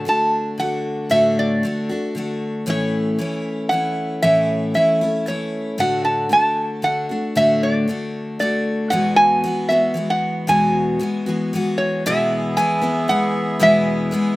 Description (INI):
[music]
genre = acoustic folk duo or small band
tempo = 115 BPM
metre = 3/4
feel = straight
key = unclear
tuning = A4 = 439 Hz
[part]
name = metal-body resonator slide guitar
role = melody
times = 0.0-14.4 s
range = C#5 to A5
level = -18 LUFS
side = right 1 dB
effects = none
[part]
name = picked steel-string acoustic guitar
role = accompaniment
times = 0.0-14.4 s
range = E2 to F#4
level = -21 LUFS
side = left 1 dB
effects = none
[part]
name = hand-pumped harmonium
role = sustained chords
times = 12.1-14.4 s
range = E3 to E5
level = -24 LUFS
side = right 1 dB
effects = none
[sound]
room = little or no reverb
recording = recorded outdoors, with no room sound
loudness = -17 LUFS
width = side -19 dB against mid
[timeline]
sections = 0.0-12.0 A section; 12.0-14.4 B section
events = none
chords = 0.0 D; 2.7 A; 5.8 D/A; 8.9 Eadd9; 12.0 E